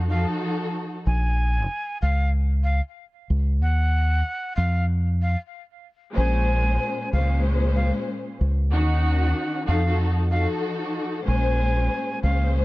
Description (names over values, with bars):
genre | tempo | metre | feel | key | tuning
hip hop, boom-bap hip-hop | 94 BPM | 4/4 | swing 56% on 16ths | Bb minor | A4 = 439 Hz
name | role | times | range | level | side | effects
warm studio string section | accompaniment | 0.0-1.0, 6.1-12.6 s | Bb2 to C5 | -26 LUFS | left 1 dB | cassette tape, high-pass filter, low-pass filter
deep dub fingered electric bass | bass | 0.0-12.6 s | Bb1 to F2 | -20 LUFS | equal | none
breathy bright jazz flute | melody | 0.1-12.5 s | F5 to Ab5 | -30 LUFS | equal | high-pass filter, low-pass filter, ping-pong delay
room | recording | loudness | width
light reverb | dark, warm production | -21 LUFS | side -19 dB against mid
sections
0.0-12.6 A section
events
none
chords
0.0 F7b9; 1.1 Bbm7; 3.6 Ebm; 4.6 N.C.; 6.2 Bbm9; 8.7 Ebm7; 9.7 F7b9; 11.3 Bbm9